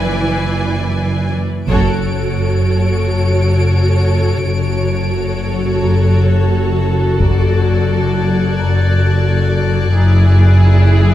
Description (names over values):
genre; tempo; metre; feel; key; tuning
cinematic, suspense film score; 87 BPM; 4/4; straight; F# minor; A4 = 440 Hz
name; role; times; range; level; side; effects
warm symphonic violin section; melody; 0.0-11.1 s; C#5 to G#5; -27 LUFS; left 2 dB; none
warm symphonic violin section; second line; 0.0-11.1 s; G#4 to D5; -24 LUFS; left 2 dB; none
warm symphonic viola section; accompaniment; 0.0-11.1 s; E3 to F#4; -22 LUFS; right 2 dB; none
rich symphonic cello section; bass; 0.0-11.1 s; F#2; -18 LUFS; right 2 dB; none
warm symphonic double bass section; bass; 0.0-11.1 s; F#1; -18 LUFS; right 2 dB; none
warm symphonic violin section; texture; 0.0-11.1 s; C#5 to D7; -27 LUFS; left 3 dB; none
marimba with medium hard mallets; riff; 1.7-11.1 s; F#2 to F#3; -15 LUFS; left 3 dB; none
taiko ensemble; drums; 1.7-3.0, 7.2-8.5 s; none; -21 LUFS; equal; none
room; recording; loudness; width
moderate scoring stage reverb, RT60 1.8 s; none; -12 LUFS; side -13 dB against mid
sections
0.0-1.7 A section; 1.7-11.1 A section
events
band accent 1.7-2.4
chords
0.0 E7/F#; 1.7 F#m; 10.0 E7/F#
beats
0.31 1.00 | 1.69 2.38 3.06 3.75 | 4.45 5.13 5.82 6.51 | 7.20 7.89 8.58 9.27 | 9.96 10.65